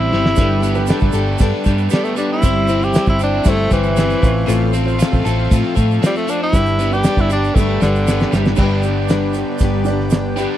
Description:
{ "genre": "folk rock and heartland rock", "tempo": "117 BPM", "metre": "4/4", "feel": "straight", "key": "unclear", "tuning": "A4 = 441 Hz", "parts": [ { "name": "breathy tenor saxophone", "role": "melody", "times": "0.0-8.6 s", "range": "D3 to G4", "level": "-19 LUFS", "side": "equal", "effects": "none" }, { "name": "picked plugged-in steel-string acoustic guitar", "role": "accompaniment", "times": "0.0-10.6 s", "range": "A2 to C5", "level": "-22 LUFS", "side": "left 9 dB", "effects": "none" }, { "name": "accordion", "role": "sustained chords", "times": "0.0-10.6 s", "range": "G3 to F5", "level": "-31 LUFS", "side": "right 2 dB", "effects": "none" }, { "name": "overdriven electric guitar", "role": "riff", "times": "0.0-10.6 s", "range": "G2 to A4", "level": "-22 LUFS", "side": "right 2 dB", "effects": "spring reverb" }, { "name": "hollow-body short-scale fingered electric bass", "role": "bass", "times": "0.0-10.4 s", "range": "G1 to A2", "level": "-18 LUFS", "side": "equal", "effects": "none" }, { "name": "cloth-damped thuddy drum kit", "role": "drums", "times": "0.1-10.5 s", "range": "crash cymbal, hi-hat, kick drum, snare drum", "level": "-16 LUFS", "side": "equal", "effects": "none" }, { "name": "dark upright piano", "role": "accompaniment", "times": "0.4-10.6 s", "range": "D4 to F5", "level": "-29 LUFS", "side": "right 8 dB", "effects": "none" }, { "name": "tube shaker", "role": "percussion", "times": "0.4-10.5 s", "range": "none", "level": "-36 LUFS", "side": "right 22 dB", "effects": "none" } ], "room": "little or no reverb", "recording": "dry, close 1970s-style studio recording", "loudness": "-13 LUFS", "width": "side -12 dB against mid", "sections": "0.0-8.6 A section; 8.6-10.6 B section", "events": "tenor saxophone solo 0.0-8.6; drum fill 0.1, 7.6-8.6", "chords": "0.4 Gadd9; 2.4 C/G; 4.2 F/A; 6.5 G" }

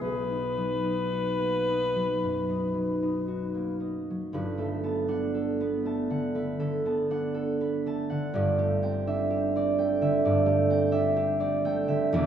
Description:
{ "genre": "classical, impressionist duo for alto saxophone and harp", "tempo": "54-65 BPM", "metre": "4/4", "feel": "rubato", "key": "B major, G major from 4.3 s", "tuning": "A4 = 440 Hz", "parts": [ { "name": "clear alto saxophone", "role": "melody", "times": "0.0-3.8 s", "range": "B4", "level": "-29 LUFS", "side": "left 2 dB", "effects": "none" }, { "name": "concert harp", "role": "accompaniment", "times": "0.0-12.3 s", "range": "E1 to A5", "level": "-26 LUFS", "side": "right 1 dB", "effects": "none" } ], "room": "wet scoring stage reverb, RT60 1.6 s", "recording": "none", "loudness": "-25 LUFS", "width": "side -9 dB against mid", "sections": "0.0-4.3 A section; 4.3-12.3 B section", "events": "none", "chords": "0.0 Bmaj7; 4.3 Gmaj9; 8.3 D11/G" }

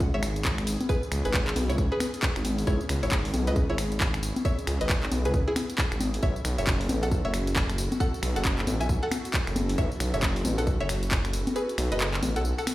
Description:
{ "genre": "UK garage, two-step garage", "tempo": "135 BPM", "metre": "4/4", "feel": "swing 61% on 16ths", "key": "C# minor", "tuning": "A4 = 441 Hz", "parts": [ { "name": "string-like resonator pluck", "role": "melody", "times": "0.0-12.7 s", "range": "E4 to G#5", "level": "-33 LUFS", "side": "equal", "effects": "chorus, tape echo" }, { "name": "airy breathy pad", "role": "sustained chords", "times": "0.0-12.7 s", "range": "B3 to A4", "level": "-38 LUFS", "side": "left 1 dB", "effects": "chorus, sidechain pumping" }, { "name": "dark detuned saw bass", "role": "bass", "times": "0.0-12.5 s", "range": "F#1 to C#2", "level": "-28 LUFS", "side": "equal", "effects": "none" }, { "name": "electronic kick drum", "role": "drums", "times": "0.0-11.2 s", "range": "none", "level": "-28 LUFS", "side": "equal", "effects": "studio reverb" }, { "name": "house drum kit", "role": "drums", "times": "0.0-12.7 s", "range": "congas, finger snaps, handclaps, hi-hat, tambourine", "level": "-30 LUFS", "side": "left 1 dB", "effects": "studio reverb" }, { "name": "impact", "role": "sound effects", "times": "0.0-0.9 s", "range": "none", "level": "barely audible", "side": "none", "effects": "none" } ], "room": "light reverb", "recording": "played on a big sound system in a bare room, stone room reverb", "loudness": "-24 LUFS", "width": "side -16 dB against mid", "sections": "0.0-12.7 A section", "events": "impact 0.0-0.9; kick drops out 11.6-12.7", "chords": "0.0 C#m7; 6.2 B7sus4" }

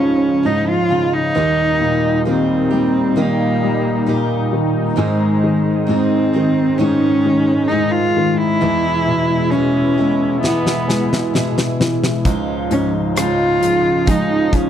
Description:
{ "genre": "pop ballad", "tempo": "66 BPM", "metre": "4/4", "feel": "straight", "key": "unclear", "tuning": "A4 = 442 Hz", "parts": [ { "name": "warm cello", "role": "melody", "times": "0.0-14.7 s", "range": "Ab3 to F4", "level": "-17 LUFS", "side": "right 1 dB", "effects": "none" }, { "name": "warm baby grand piano", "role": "accompaniment", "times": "0.0-14.7 s", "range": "Db2 to G#3", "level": "-20 LUFS", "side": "left 4 dB", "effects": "none" }, { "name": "lush unison pad", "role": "sustained chords", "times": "0.0-14.7 s", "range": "Bb2 to E4", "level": "-21 LUFS", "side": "equal", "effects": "chorus, phaser" }, { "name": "picked steel-string acoustic guitar", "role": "arpeggios", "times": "0.0-14.7 s", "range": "Ab2 to Ab4", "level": "-24 LUFS", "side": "right 7 dB", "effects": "none" }, { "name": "huge arena drum kit", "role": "drums", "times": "10.4-14.7 s", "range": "hi-hat, kick drum, rim click, snare drum", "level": "-20 LUFS", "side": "left 1 dB", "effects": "none" } ], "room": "little or no reverb", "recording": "dry, close 1970s-style studio recording", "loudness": "-14 LUFS", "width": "side -9 dB against mid", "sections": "0.0-14.7 A section", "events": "drum fill 10.4-12.3", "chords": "0.0 Dbadd9; 1.3 Eb; 5.0 Ab; 8.6 E; 12.3 Dbadd9" }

